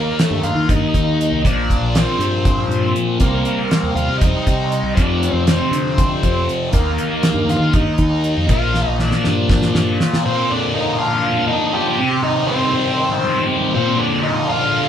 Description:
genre	psychedelic rock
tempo	239 BPM (eighths)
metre	7/8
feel	straight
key	unclear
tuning	A4 = 439 Hz
part	octave-fuzz lead guitar	melody	0.0-14.9 s	Bb3 to G4	-22 LUFS	equal	distortion
part	thick fuzz guitar	riff	0.0-14.9 s	F2 to G4	-18 LUFS	left 1 dB	distortion, phaser
part	tanpura	drone	0.0-3.2 s	none	barely audible	none	none
part	damped 70s drum kit	drums	0.2-10.2 s	hi-hat, kick drum, snare drum	-18 LUFS	equal	none
part	fingered electric bass	bass	0.3-10.0 s	Bb1 to Eb3	-22 LUFS	equal	none
room	wet large studio reverb, RT60 0.9 s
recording	band playing live in one room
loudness	-15 LUFS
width	side -9 dB against mid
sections	0.0-10.2 A section; 10.2-14.9 B section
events	drum fill 8.7-10.2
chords	0.0 Eb; 1.4 Bb; 3.2 Cm7; 5.0 F5; 6.7 Eb; 8.5 Bb; 12.0 Cm; 13.7 Bb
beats	0.19 0.44 0.69 0.94 1.19 | 1.45 1.70 1.95 2.20 2.45 2.71 2.96 | 3.21 3.46 3.71 3.96 4.22 4.47 4.72 | 4.97 5.22 5.47 5.73 5.98 6.23 6.48 | 6.73 6.98 7.23 7.49 7.74 7.99 8.24 | 8.49 8.74 8.99 9.24 9.49 9.74 9.99 | 10.24 10.49 10.74 10.99 11.24 11.49 11.74 | 11.99 12.24 12.49 12.74 12.99 13.24 13.48 | 13.73 13.98 14.23 14.48 14.73

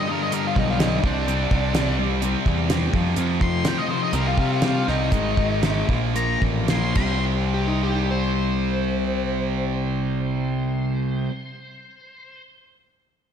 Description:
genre	classic rock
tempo	106-127 BPM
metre	4/4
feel	straight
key	unclear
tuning	A4 = 440 Hz
part	octave-fuzz lead guitar	melody	0.0-7.2 s	D4 to C6	-27 LUFS	left 3 dB	distortion, slapback echo
part	overdriven semi-hollow guitar	riff	0.0-11.3 s	F2 to C4	-27 LUFS	left 8 dB	slapback echo
part	tight distorted guitar	riff	0.0-11.3 s	F2 to C4	-27 LUFS	right 9 dB	distortion
part	damped 70s drum kit	drums	0.3-7.1 s	crash cymbal, hi-hat, kick drum, snare drum	-25 LUFS	right 1 dB	none
part	fuzz picked electric bass	bass	0.6-11.3 s	Ab1 to C3	-25 LUFS	right 1 dB	overdrive
part	overdriven slide guitar	second line	7.5-12.4 s	Eb4 to C5	-30 LUFS	equal	slapback echo
room	wet recital hall reverb, RT60 1.5 s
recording	big arena sound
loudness	-20 LUFS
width	side -8 dB against mid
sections	0.0-7.2 A section; 7.2-11.7 B section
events	lead electric guitar solo 0.0-7.2; slowing down 3.2-7.2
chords	0.0 G; 1.0 Csus2; 2.9 F5; 4.1 C5; 5.1 Ab5; 5.9 Bb5; 7.0 C5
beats	0.32 0.80 | 1.27 1.75 2.22 2.70 | 3.17 3.65 4.13 4.62 | 5.12 5.63 6.15 6.68 | 7.24 7.80 8.36 8.93 | 9.49 10.05 10.62 11.18

